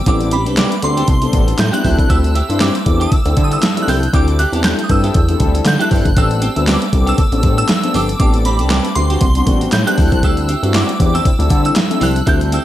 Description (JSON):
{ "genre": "early-eighties boogie funk", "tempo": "118 BPM", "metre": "4/4", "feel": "swing 56% on 16ths", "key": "unclear", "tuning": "A4 = 440 Hz", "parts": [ { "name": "shimmering bell with halo", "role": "melody", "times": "0.0-12.6 s", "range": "B5 to G6", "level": "-21 LUFS", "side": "right 2 dB", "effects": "ensemble chorus" }, { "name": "mellow synth brass", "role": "accompaniment", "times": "0.1-12.6 s", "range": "F#3 to C5", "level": "-20 LUFS", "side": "left 4 dB", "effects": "chorus" }, { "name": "semi-hollow electric guitar", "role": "riff", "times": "0.1-12.6 s", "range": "C4 to A4", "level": "-25 LUFS", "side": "right 3 dB", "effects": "lush chorus" }, { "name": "chorused synth bass", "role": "bass", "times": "0.1-12.6 s", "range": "G1 to D3", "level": "-16 LUFS", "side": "equal", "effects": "none" }, { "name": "detuned 8-bit digital drum machine", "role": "drums", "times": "0.1-12.6 s", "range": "handclaps, hi-hat, kick drum, snare drum", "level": "-16 LUFS", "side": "equal", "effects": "gated reverb" }, { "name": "congas", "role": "percussion", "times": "0.1-12.4 s", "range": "none", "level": "-24 LUFS", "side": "right 2 dB", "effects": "none" } ], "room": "little or no reverb", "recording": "none", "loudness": "-12 LUFS", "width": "side -13 dB against mid", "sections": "0.0-12.6 A section", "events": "none", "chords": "0.0 Am11; 1.8 D9sus4; 6.2 Am11; 10.0 D9sus4", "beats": "| 0.06 0.57 1.08 1.59 | 2.10 2.61 3.12 3.62 | 4.13 4.64 5.15 5.66 | 6.17 6.67 7.18 7.69 | 8.20 8.71 9.22 9.72 | 10.23 10.74 11.25 11.76 | 12.27" }